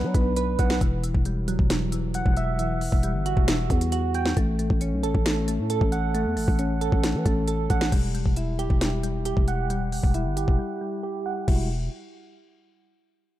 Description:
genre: hip hop, trap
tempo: 135 BPM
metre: 4/4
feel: half-time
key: E dorian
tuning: A4 = 440 Hz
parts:
  - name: soft electric-piano-like synth keys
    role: arpeggios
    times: 0.0-11.7 s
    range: E3 to G5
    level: -27 LUFS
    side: right 1 dB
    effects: chorus, tremolo, low-pass filter, digital delay
  - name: growling 808-style bass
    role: bass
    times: 0.0-11.9 s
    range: E1 to F#3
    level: -26 LUFS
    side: equal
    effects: none
  - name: trap drum kit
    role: drums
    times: 0.1-11.6 s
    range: crash cymbal, hi-hat, kick drum, snare drum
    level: -24 LUFS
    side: equal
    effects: none
room: little or no reverb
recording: dark, warm production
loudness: -22 LUFS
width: side -14 dB against mid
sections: 0.0-7.9 A section; 7.9-11.5 B section; 11.5-13.3 C section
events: filter sweep on synth keys 7.9-11.5; break 10.6-11.5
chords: 0.0 Bm; 0.8 Emadd9; 4.4 A6; 7.9 Emadd9

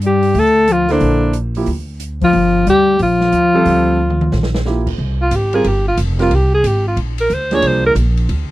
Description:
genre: modal jazz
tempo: 181 BPM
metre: 4/4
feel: swing 64% on 8ths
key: unclear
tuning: A4 = 440 Hz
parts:
  - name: dark bass clarinet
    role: second line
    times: 0.0-4.6 s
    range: D3 to A3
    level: -17 LUFS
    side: left 6 dB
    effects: none
  - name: upright bass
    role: bass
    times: 0.0-8.5 s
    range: F1 to G2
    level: -18 LUFS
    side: equal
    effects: none
  - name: open jazz drum kit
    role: drums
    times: 0.0-8.4 s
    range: crash cymbal, hi-hat, kick drum, ride cymbal, snare drum, toms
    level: -26 LUFS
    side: right 1 dB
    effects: none
  - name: clear alto saxophone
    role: melody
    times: 0.1-7.9 s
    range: D4 to Db5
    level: -14 LUFS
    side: equal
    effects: none
  - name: warm baby grand piano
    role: accompaniment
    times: 0.9-7.9 s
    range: F3 to C5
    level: -19 LUFS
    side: right 3 dB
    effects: none
room: light reverb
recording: dry, close 1970s-style studio recording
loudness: -12 LUFS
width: side -16 dB against mid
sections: 0.0-5.0 A section; 5.0-8.5 B section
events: drum fill 4.0-4.7; alto saxophone solo 5.0-8.5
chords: 0.0 Gm9; 5.0 C9sus4

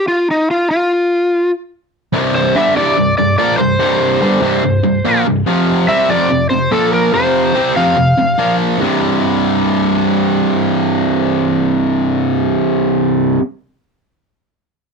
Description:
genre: rock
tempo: 144 BPM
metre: 4/4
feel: straight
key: unclear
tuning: A4 = 440 Hz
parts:
  - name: overdriven slide guitar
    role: melody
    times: 0.0-8.6 s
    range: Eb4 to F5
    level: -14 LUFS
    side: left 1 dB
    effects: none
  - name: distorted electric guitar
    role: riff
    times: 2.1-13.4 s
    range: C2 to C4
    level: -13 LUFS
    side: right 1 dB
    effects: overdrive
room: light reverb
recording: dry, close 1970s-style studio recording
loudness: -12 LUFS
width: side -4 dB against mid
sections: 0.0-2.1 A section; 2.1-8.8 B section; 8.8-12.1 C section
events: electric slide guitar solo 0.0-2.1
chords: 0.0 N.C.; 2.1 C5; 5.5 F5; 6.7 Bb5; 7.1 F5; 8.4 Bb5; 8.8 C5

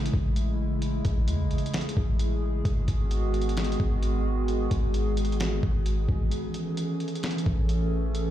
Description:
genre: hip hop, atmospheric cloud-rap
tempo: 131 BPM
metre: 4/4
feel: half-time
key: A lydian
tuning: A4 = 442 Hz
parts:
  - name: warbly tape-like pad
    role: sustained chords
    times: 0.0-8.3 s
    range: C#3 to A4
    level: -30 LUFS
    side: equal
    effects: chorus, built-in reverb, sidechain pumping
  - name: warm 808-style bass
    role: bass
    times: 0.0-8.3 s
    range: G#1 to E2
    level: -26 LUFS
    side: equal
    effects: none
  - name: lo-fi sampler-style drum kit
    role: drums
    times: 0.1-8.3 s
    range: hi-hat, kick drum, snare drum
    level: -31 LUFS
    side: equal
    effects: none
room: little or no reverb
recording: played on a big sound system in a bare room, large studio reverb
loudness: -24 LUFS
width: side -12 dB against mid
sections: 0.0-8.3 A section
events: break 6.3-6.8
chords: 0.0 Amaj7; 2.7 G#m7; 6.3 Amaj7

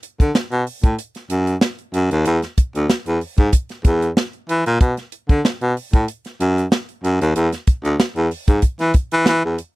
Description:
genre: funk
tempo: 94 BPM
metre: 4/4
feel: straight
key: B dorian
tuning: A4 = 440 Hz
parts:
  - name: tight funk drum kit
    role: drums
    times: 0.0-9.7 s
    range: hi-hat, kick drum, snare drum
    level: -16 LUFS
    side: equal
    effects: none
  - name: breathy baritone saxophone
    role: bass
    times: 0.2-9.6 s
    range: D2 to E3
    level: -17 LUFS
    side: equal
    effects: none
room: little or no reverb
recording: dry, close 1970s-style studio recording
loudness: -16 LUFS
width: side -20 dB against mid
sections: 0.0-9.8 A section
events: none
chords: none

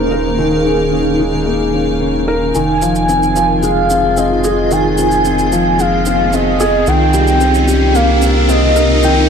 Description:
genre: piano and strings electronica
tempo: 111 BPM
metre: 4/4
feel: straight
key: F minor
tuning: A4 = 440 Hz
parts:
  - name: warm velvety synth lead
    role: melody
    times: 0.0-9.3 s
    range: Ab4 to Ab5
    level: -16 LUFS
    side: equal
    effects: chorus
  - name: granular cloud pad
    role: sustained chords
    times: 0.0-9.3 s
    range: C4 to Ab5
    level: -19 LUFS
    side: equal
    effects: built-in reverb
  - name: felt-muted upright piano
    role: riff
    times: 0.0-9.3 s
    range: Eb3 to Bb4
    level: -15 LUFS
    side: left 1 dB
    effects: digital delay
  - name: round analog bass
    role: bass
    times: 0.0-9.3 s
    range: Eb1 to C2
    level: -18 LUFS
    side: equal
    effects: none
  - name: shaker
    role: drums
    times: 2.5-9.1 s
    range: none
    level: -27 LUFS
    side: right 2 dB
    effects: small room ambience
  - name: riser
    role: sound effects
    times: 4.6-9.3 s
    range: none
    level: -20 LUFS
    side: right 1 dB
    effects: none
room: moderate huge ambient reverb, RT60 4.6 s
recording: dark, warm production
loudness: -11 LUFS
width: side -7 dB against mid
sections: 0.0-2.5 A section; 2.5-9.3 B section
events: build-up 2.5-9.3; riser 4.6-9.3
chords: 0.0 Eb7sus4; 2.5 Fm7; 6.9 Cm7

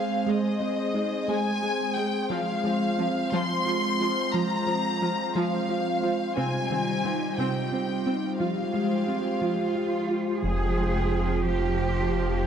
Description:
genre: cinematic, hybrid orchestral and electronic film score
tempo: 59 BPM (dotted quarters)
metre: 6/8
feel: straight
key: F minor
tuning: A4 = 441 Hz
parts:
  - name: warm symphonic violin section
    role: melody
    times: 0.0-10.1 s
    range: Eb5 to C6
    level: -30 LUFS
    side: left 2 dB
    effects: none
  - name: airy breathy pad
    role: sustained chords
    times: 0.0-12.5 s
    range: F3 to G5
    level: -28 LUFS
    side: equal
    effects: chorus
  - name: thumb-piano-like synth pluck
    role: arpeggios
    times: 0.0-12.3 s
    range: C3 to Ab4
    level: -32 LUFS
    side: right 1 dB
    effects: chorus, tape echo
  - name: warm symphonic viola section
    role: accompaniment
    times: 0.3-12.5 s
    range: F3 to F4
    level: -32 LUFS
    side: right 2 dB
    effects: none
  - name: warm symphonic cello section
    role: bass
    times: 9.4-12.5 s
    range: F4 to Ab4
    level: -31 LUFS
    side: right 2 dB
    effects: none
  - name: wide detuned saw bass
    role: bass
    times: 10.4-12.5 s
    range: F1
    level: -27 LUFS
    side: equal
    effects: chorus
room: wet scoring stage reverb, RT60 1.7 s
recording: dark, warm production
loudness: -24 LUFS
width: side -8 dB against mid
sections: 0.0-10.4 A section; 10.4-12.5 A section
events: none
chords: 0.0 Ab; 2.3 Fm; 6.4 Cm; 8.4 Fmadd9

